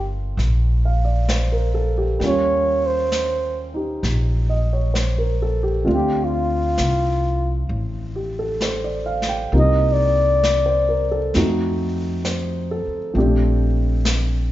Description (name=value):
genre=jazz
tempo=66 BPM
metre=4/4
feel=swing 68% on 8ths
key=unclear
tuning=A4 = 439 Hz
part: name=dark flugelhorn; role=melody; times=0.0-11.3 s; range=F4 to Eb5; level=-20 LUFS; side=equal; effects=none
part: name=warm grand piano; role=accompaniment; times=0.0-14.5 s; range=F3 to G5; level=-24 LUFS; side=right 1 dB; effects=none
part: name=upright bass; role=bass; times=0.0-14.5 s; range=G1 to F2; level=-21 LUFS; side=equal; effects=none
part: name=jazz brush drum kit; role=drums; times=0.4-14.5 s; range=brushed snare drum, hi-hat, snare drum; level=-27 LUFS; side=left 1 dB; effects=none
room=light reverb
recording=nothing above 7.6 kHz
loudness=-18 LUFS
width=side -14 dB against mid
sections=0.0-14.5 A section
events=flugelhorn solo 0.0-14.5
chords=0.0 Gm7; 2.2 Eb13; 5.9 Dm7; 9.5 Cm11; 11.3 F7b9; 13.2 Bbmaj13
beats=0.38 1.28 | 2.19 3.10 4.02 4.94 | 5.86 6.78 7.69 8.61 | 9.53 10.44 11.35 12.25 | 13.16 14.06